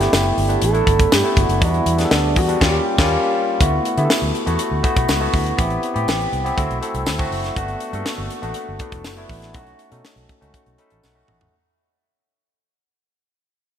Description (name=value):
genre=polished 1980s jazz-funk pop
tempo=121 BPM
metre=4/4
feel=straight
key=D major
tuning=A4 = 441 Hz
part: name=expressive portamento lead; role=melody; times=0.0-3.3 s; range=D4 to A4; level=-22 LUFS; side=right 3 dB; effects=chorus
part: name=barky tine electric piano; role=accompaniment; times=0.0-11.6 s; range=G3 to B5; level=-21 LUFS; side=left 2 dB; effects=overdrive, wide subtle chorus
part: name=vintage muted fingered electric bass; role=bass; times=0.0-11.5 s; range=E1 to D3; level=-22 LUFS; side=equal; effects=none
part: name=tight funk drum kit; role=drums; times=0.0-11.5 s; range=crash cymbal, hi-hat, kick drum, snare drum, toms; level=-20 LUFS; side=equal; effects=none
part: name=tambourine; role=percussion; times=0.1-11.2 s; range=none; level=-35 LUFS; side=right 7 dB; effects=none
room=moderate lush hall reverb, RT60 2.7 s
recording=bright 1980s-style digital production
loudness=-16 LUFS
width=side -9 dB against mid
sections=0.0-3.6 A section; 3.6-11.5 B section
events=band accent 2.6-3.6; fade-out 3.6-11.5; tine electric piano fill 10.5-11.5; drum fill 11.0-11.5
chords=0.0 G6; 1.6 Em7; 2.6 Eb9; 3.6 D6; 5.6 Am7; 6.6 D7; 7.6 Gmaj7; 9.6 B7